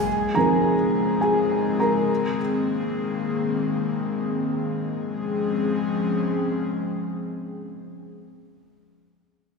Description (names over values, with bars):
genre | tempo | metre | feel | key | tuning
pop | free time | none | none | Db major | A4 = 440 Hz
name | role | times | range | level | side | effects
felt-muted upright piano | accompaniment | 0.0-2.4 s | Eb3 to Bb5 | -21 LUFS | right 1 dB | none
airy breathy pad | sustained chords | 0.0-7.9 s | Db3 to Ab4 | -24 LUFS | left 3 dB | chorus
room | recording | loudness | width
wet concert hall reverb, RT60 2.0 s | recorded in a church or concert hall | -21 LUFS | side -4 dB against mid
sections
0.0-4.9 A section; 4.9-7.6 B section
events
felt piano solo 0.0-4.9; slowing down 0.1-4.9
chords
0.1 Dbmaj7; 2.1 Abadd9; 4.9 Dbmaj7